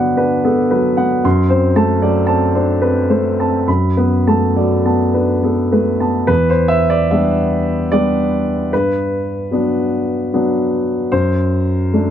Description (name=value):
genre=neoclassical minimalist piano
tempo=68-77 BPM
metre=3/4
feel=rubato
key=E minor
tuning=A4 = 440 Hz
part: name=warm concert grand piano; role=solo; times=0.0-12.1 s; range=E2 to C6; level=-13 LUFS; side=equal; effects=none
room=light reverb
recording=none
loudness=-13 LUFS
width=side -10 dB against mid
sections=0.0-6.3 A section; 6.3-12.1 B section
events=none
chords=0.0 Gmaj7; 1.2 D7/F#; 3.7 Bm7/F#; 6.3 Em7; 8.7 Gmaj7; 11.1 D7/F#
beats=0.46 | 1.25 2.03 2.83 | 3.67 4.55 5.43 | 6.29 7.11 7.91 | 8.71 9.51 10.32 | 11.12 11.92